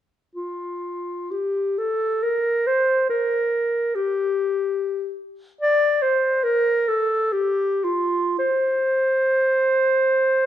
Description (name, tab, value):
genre	classical, free, expressive piece for unaccompanied clarinet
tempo	54-73 BPM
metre	3/4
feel	rubato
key	unclear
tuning	A4 = 440 Hz
part	mellow clarinet	solo	0.4-10.5 s	F4 to D5	-19 LUFS	equal	none
room	light reverb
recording	minimal, uncompressed stereo recording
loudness	-19 LUFS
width	side -11 dB against mid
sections	0.4-10.5 A section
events	none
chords	none